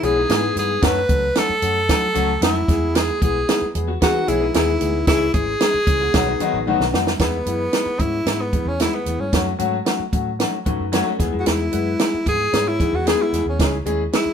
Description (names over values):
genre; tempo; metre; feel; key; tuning
uptempo 1960s-style soul; 113 BPM; 4/4; straight; E major; A4 = 440 Hz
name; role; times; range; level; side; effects
breathy tenor saxophone; melody; 0.0-14.3 s; B3 to B4; -22 LUFS; equal; none
warm concert grand piano; accompaniment; 0.0-14.3 s; D#3 to B4; -23 LUFS; left 5 dB; none
electric guitar through a small old amp; riff; 0.0-7.0, 10.7-13.6 s; G#3 to C#5; -29 LUFS; left 5 dB; none
vintage muted fingered electric bass; bass; 0.0-14.3 s; G#1 to F#3; -26 LUFS; right 1 dB; none
compact cocktail drum kit; drums; 0.0-14.3 s; hi-hat, kick drum, snare drum; -20 LUFS; right 2 dB; none
congas; percussion; 0.0-14.3 s; none; -35 LUFS; equal; none
room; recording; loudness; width
moderate studio reverb, RT60 0.7 s; band playing live in one room; -17 LUFS; side -8 dB against mid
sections
0.0-7.2 A section; 7.2-14.3 B section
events
drum fill 6.7-7.2; tenor saxophone solo 7.2-14.3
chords
0.0 E; 0.8 F#m; 2.7 E; 5.1 C#m; 6.1 B; 7.2 E; 9.3 F#m; 11.2 E; 13.6 C#m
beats
0.30 | 0.83 1.36 1.89 2.42 | 2.95 3.48 4.01 4.54 | 5.08 5.61 6.14 6.67 | 7.20 7.74 8.27 8.80 | 9.33 9.87 10.40 10.93 | 11.47 12.00 12.53 13.06 | 13.60 14.13